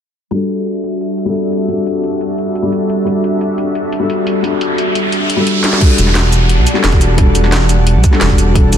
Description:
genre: liquid drum and bass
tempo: 175 BPM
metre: 4/4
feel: straight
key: E minor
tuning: A4 = 438 Hz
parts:
  - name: felt-muted upright piano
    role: accompaniment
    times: 0.3-8.8 s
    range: G3 to A4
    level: -16 LUFS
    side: left 3 dB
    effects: ping-pong delay
  - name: airy breathy pad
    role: sustained chords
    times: 0.3-8.8 s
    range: G3 to A5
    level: -20 LUFS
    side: right 2 dB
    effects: chorus, sidechain pumping
  - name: drum and bass drum kit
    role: drums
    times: 0.3-8.8 s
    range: cabasa, crash cymbal, hi-hat, snare drum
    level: -18 LUFS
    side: equal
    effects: low-pass filter on hats, low-pass filter on snare, low-pass filter on cymbals, low-pass filter on perc, low-pass filter on room
  - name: riser and downlifter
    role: sound effects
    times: 3.9-8.6 s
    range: none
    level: -20 LUFS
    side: right 1 dB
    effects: none
  - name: electronic kick drum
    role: drums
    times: 5.8-8.6 s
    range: none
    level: -11 LUFS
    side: right 1 dB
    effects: none
  - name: dark detuned saw bass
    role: bass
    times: 6.0-8.8 s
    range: E1 to B1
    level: -12 LUFS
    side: right 1 dB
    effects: none
room: light reverb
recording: dense, heavily limited modern master, low-pass filter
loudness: -11 LUFS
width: side -9 dB against mid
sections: 0.3-5.8 A section; 5.8-8.8 B section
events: filter sweep on drum 0.3-5.8; filter sweep 0.3-5.8; riser 3.9-5.8; drum fill 5.6; drop 5.8-8.8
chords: 0.3 Em11

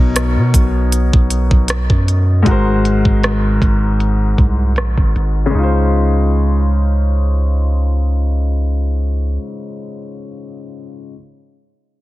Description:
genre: contemporary R&B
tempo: 78 BPM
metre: 4/4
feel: swing 54% on 16ths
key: Db major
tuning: A4 = 440 Hz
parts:
  - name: warm grand piano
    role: accompaniment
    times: 0.0-11.1 s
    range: Ab2 to Db5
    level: -19 LUFS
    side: left 2 dB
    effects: none
  - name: long sustained 808-style bass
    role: bass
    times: 0.0-9.4 s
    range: Ab1 to Cb3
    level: -15 LUFS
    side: equal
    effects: none
  - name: pop drum kit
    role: drums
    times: 0.2-5.3 s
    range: hi-hat, kick drum, rim click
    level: -15 LUFS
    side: equal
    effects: none
room: little or no reverb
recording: heavily compressed radio sound, multiband compression, low-pass filter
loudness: -12 LUFS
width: side -17 dB against mid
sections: 0.0-5.5 A section; 5.5-8.6 B section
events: filter sweep 0.0-5.5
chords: 0.0 Cbmaj9; 2.5 Ab7; 5.5 Dbmaj7

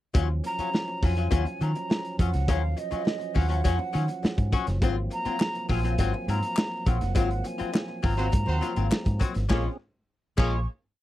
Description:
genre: funk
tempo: 103 BPM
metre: 4/4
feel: straight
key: unclear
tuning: A4 = 436 Hz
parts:
  - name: archtop guitar, miked and amplified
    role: accompaniment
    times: 0.1-10.6 s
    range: Gb3 to Gb4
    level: -32 LUFS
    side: left 8 dB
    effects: wah
  - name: tonewheel organ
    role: sustained chords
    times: 0.1-9.8 s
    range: F3 to Ab4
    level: -37 LUFS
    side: right 2 dB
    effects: slow rotary speaker, overdrive, chorus vibrato
  - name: vintage muted fingered electric bass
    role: bass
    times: 0.1-10.7 s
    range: Gb1 to Eb3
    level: -26 LUFS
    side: equal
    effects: none
  - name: crunchy breakbeat drum kit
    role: drums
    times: 0.1-10.5 s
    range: crash cymbal, hi-hat, kick drum, snare drum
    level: -25 LUFS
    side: equal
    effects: none
  - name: breathy mellow jazz flute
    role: melody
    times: 0.5-10.7 s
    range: Eb5 to Db6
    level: -33 LUFS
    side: right 2 dB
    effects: none
  - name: group handclap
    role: percussion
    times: 5.4-10.7 s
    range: none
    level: -36 LUFS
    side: left 5 dB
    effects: none
  - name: clear horn section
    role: second line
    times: 8.2-10.6 s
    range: Bb3 to Db5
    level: -33 LUFS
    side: right 4 dB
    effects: slapback echo
room: light reverb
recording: dry, close 1970s-style studio recording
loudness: -24 LUFS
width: side -15 dB against mid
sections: 0.1-9.5 bridge; 9.5-11.0 final chord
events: band accent 7.2-9.5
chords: 0.1 Ebm9; 4.8 Ab13; 9.5 Bbm7

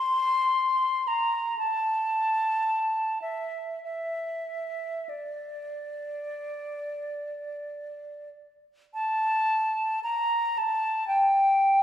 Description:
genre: classical, free, expressive piece for unaccompanied flute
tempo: 37-61 BPM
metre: 4/4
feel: rubato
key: unclear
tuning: A4 = 440 Hz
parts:
  - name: silver concert flute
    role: solo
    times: 0.0-11.8 s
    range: D5 to C6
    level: -25 LUFS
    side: equal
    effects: none
room: wet recital hall reverb, RT60 1.6 s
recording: heard from further back in the room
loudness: -25 LUFS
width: side -11 dB against mid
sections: 0.0-9.0 A section; 9.0-11.8 B section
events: none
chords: none

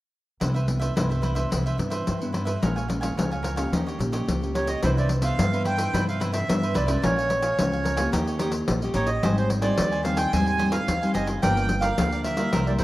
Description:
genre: samba and choro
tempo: 109 BPM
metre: 4/4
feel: straight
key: unclear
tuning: A4 = 440 Hz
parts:
  - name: cavaquinho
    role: accompaniment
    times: 0.4-12.8 s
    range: Eb4 to Ab5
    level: -32 LUFS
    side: right 2 dB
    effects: none
  - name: nylon-string guitar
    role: accompaniment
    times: 0.4-12.8 s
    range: F2 to G4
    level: -29 LUFS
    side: left 1 dB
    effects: none
  - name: upright bass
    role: bass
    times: 0.4-12.8 s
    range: F#1 to Bb2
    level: -27 LUFS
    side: equal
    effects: none
  - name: pandeiro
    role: percussion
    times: 0.4-12.8 s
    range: none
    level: -28 LUFS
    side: left 2 dB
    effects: none
  - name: accordion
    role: melody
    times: 4.6-12.8 s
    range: C5 to Ab5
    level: -27 LUFS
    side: right 2 dB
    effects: none
room: moderate lush hall reverb, RT60 2.4 s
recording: rough home demo mix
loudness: -22 LUFS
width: side -16 dB against mid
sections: 0.4-4.8 A section; 4.8-12.8 B section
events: none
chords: 0.4 Cmaj9; 2.6 Bbm7; 3.7 Eb7; 4.8 Cmaj9; 7.0 Bbm7; 8.1 Eb7; 9.2 Abmaj7; 11.4 Gm7

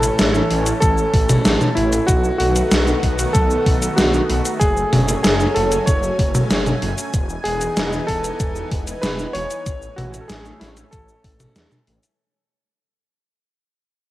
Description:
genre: synthwave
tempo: 95 BPM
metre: 4/4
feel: straight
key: unclear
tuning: A4 = 442 Hz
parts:
  - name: warm electric grand piano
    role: melody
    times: 0.0-11.8 s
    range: E4 to C#5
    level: -22 LUFS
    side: equal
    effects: analog delay
  - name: lush unison pad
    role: sustained chords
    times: 0.0-12.2 s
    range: D#3 to G#5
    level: -25 LUFS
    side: equal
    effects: chorus, phaser, sidechain pumping, cassette tape
  - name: wide detuned saw bass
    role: bass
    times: 0.0-12.0 s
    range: E1 to E2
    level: -23 LUFS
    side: equal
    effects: chorus, sidechain pumping
  - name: gated 80s digital drum machine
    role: drums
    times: 0.0-12.2 s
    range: cabasa, hi-hat, snare drum, toms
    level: -20 LUFS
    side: equal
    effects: gated reverb, gated reverb snare, overdrive, cassette tape
  - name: electronic kick drum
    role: drums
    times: 0.8-11.4 s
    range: none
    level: -18 LUFS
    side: equal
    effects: overdrive, cassette tape
room: light reverb, digital ambience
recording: home recording on cassette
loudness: -16 LUFS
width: side -15 dB against mid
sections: 0.0-12.2 A section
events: fade-out 5.5-12.2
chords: 0.0 Amaj7; 2.1 B7; 4.6 F#madd9; 7.1 Emaj7; 9.7 Amaj7

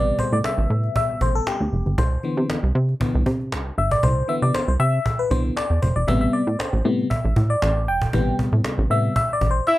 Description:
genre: early-eighties boogie funk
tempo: 117 BPM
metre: 4/4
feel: straight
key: A minor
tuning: A4 = 442 Hz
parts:
  - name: FM electric piano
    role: accompaniment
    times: 0.0-9.8 s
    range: C3 to G5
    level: -23 LUFS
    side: left 2 dB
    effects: chorus, phaser, plate reverb
  - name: plucky analog bass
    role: bass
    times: 0.0-9.6 s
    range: E1 to C3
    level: -20 LUFS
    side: right 1 dB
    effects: none
  - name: cajon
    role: drums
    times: 0.1-9.8 s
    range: none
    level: -26 LUFS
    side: equal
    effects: none
  - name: fat analog lead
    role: melody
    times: 9.7-9.8 s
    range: E5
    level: -16 LUFS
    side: left 1 dB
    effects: none
room: light reverb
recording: none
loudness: -19 LUFS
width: side -16 dB against mid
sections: 0.0-9.8 A section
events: FM electric piano solo 0.0-9.8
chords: 0.0 Am7; 2.0 Cmaj7; 6.1 Am7

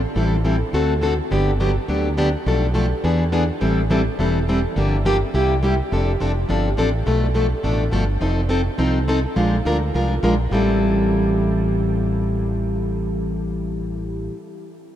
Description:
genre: acoustic string swing (jazz manouche)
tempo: 209 BPM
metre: 4/4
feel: swing 59% on 8ths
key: A minor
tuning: A4 = 441 Hz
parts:
  - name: fingered electric bass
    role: bass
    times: 0.0-14.3 s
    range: E1 to E2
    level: -22 LUFS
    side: equal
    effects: none
  - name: picked plugged-in steel-string acoustic guitar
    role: accompaniment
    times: 0.2-14.3 s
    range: A2 to Bb4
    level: -20 LUFS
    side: left 1 dB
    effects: none
room: moderate huge ambient reverb, RT60 8.6 s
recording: in a vast, echoing space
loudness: -18 LUFS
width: side -11 dB against mid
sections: 0.0-5.9 A section; 5.9-10.5 B section; 10.5-12.8 C section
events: none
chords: 0.2 Am7; 0.7 D7; 1.3 Gmaj7; 2.5 Bm7b5; 3.0 E7; 3.6 Am7; 4.8 Gm7; 5.3 C7; 5.9 F69; 7.1 Bm7b5; 8.2 F7; 9.4 Bb9; 10.5 Am7

